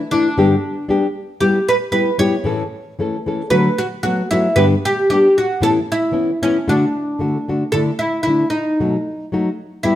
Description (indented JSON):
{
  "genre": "mexican folk, mariachi",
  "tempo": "114 BPM",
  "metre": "2/4",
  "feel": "swing 54% on 8ths",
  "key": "D major",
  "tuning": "A4 = 440 Hz",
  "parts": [
    { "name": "oud", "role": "melody", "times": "0.1-10.0 s", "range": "C#4 to C#5", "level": "-18 LUFS", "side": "right 1 dB", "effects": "none" },
    { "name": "nylon-string guitar", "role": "accompaniment", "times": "0.1-10.0 s", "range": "G2 to A4", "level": "-17 LUFS", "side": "left 2 dB", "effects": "none" }
  ],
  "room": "wet stone room reverb, RT60 1.2 s",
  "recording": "band playing live in one room",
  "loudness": "-15 LUFS",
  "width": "side -12 dB against mid",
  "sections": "0.0-7.7 A section; 7.7-10.0 A section",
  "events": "none",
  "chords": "0.4 G; 1.4 Em/G; 2.5 A; 3.5 D6; 4.6 G; 5.6 Aadd9; 6.7 D; 7.7 Dsus2; 8.8 B7"
}